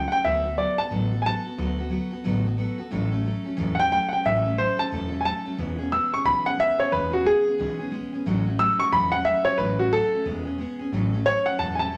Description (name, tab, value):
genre	rockabilly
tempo	180 BPM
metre	4/4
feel	swing 62% on 8ths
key	A major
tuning	A4 = 440 Hz
part	clear upright piano	melody	0.0-1.6, 3.7-12.0 s	F#4 to E6	-24 LUFS	equal	none
part	picked steel-string acoustic guitar	accompaniment	0.0-12.0 s	A2 to A4	-31 LUFS	equal	none
part	upright bass	bass	0.0-12.0 s	E1 to D2	-32 LUFS	equal	none
room	moderate large studio reverb, RT60 0.8 s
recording	none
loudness	-24 LUFS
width	mono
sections	0.0-10.9 A section; 10.9-12.0 B section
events	upright piano solo 10.9-12.0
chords	0.2 D6; 2.9 A6; 5.6 E6; 8.3 A6; 10.3 E6; 10.9 A6